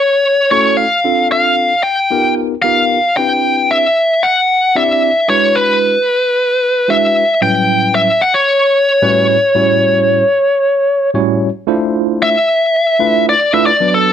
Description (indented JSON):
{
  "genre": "jazz",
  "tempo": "113 BPM",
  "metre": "4/4",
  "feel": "straight",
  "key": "unclear",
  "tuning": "A4 = 440 Hz",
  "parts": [
    { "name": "biting lead guitar", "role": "melody", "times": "0.0-14.1 s", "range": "A4 to G5", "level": "-11 LUFS", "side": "left 1 dB", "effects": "overdrive" },
    { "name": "tine electric piano", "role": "accompaniment", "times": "0.5-14.1 s", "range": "A2 to D5", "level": "-16 LUFS", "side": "right 2 dB", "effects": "medium stereo tremolo" }
  ],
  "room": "moderate club reverb, RT60 0.5 s",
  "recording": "none",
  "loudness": "-10 LUFS",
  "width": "side -9 dB against mid",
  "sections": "0.0-11.7 A section; 11.7-14.1 B section",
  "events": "lead electric guitar solo 11.7-14.1",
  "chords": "0.0 F#m7; 1.0 Dm7; 2.1 G7alt; 3.2 Cmaj9; 5.3 E7; 7.4 A13; 11.7 Dm9",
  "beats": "0.51 | 1.04 1.57 2.10 2.63 | 3.17 3.70 4.23 4.76 | 5.29 5.82 6.36 6.89 | 7.42 7.95 8.48 9.01 | 9.55 10.08 10.61 11.14 | 11.67 12.20 12.74 13.27 | 13.80"
}